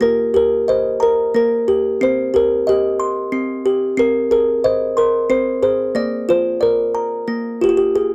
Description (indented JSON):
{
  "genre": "children's music, lullaby",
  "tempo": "90 BPM",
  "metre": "3/4",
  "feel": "rubato",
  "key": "Eb major",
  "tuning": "A4 = 439 Hz",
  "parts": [
    { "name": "music box", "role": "solo", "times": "0.0-8.1 s", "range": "Bb3 to C6", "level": "-17 LUFS", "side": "equal", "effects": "none" }
  ],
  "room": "little or no reverb",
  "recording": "dry, close 1970s-style studio recording",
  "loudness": "-17 LUFS",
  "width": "mono",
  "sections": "0.0-8.1 A section",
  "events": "none",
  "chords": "0.0 Eb; 2.0 Cm; 4.0 Ab/C; 6.0 Bb"
}